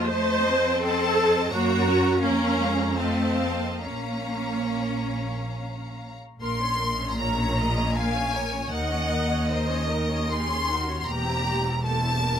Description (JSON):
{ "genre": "classical, slow romantic movement for string orchestra", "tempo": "66-87 BPM", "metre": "3/4", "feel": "rubato", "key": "Bb minor", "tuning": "A4 = 440 Hz", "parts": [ { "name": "rich studio violin section", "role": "melody", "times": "0.0-12.4 s", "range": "Eb5 to C6", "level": "-30 LUFS", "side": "left 1 dB", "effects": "none" }, { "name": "rich studio violin section", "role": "second line", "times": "0.0-12.4 s", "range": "Gb4 to F5", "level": "-32 LUFS", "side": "left 1 dB", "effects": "none" }, { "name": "rich studio viola section", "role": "accompaniment", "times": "0.0-12.4 s", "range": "Bb3 to Db5", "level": "-27 LUFS", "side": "right 1 dB", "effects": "none" }, { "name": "rich studio cello section", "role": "bass", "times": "0.0-12.4 s", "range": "Eb2 to Db4", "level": "-30 LUFS", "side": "left 1 dB", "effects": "none" }, { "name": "rich studio double bass section", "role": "bass", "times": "0.0-12.4 s", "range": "E1 to Gb2", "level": "-29 LUFS", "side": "right 1 dB", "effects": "none" } ], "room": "light reverb", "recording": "close, detailed microphones", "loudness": "-22 LUFS", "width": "side -8 dB against mid", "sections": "0.0-6.4 A section; 6.4-12.4 B section", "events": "none", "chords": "0.0 F7; 1.5 Gb; 2.2 Bbm/F; 3.0 F7; 3.8 Bbm; 8.7 Ebm7; 11.1 C7/E" }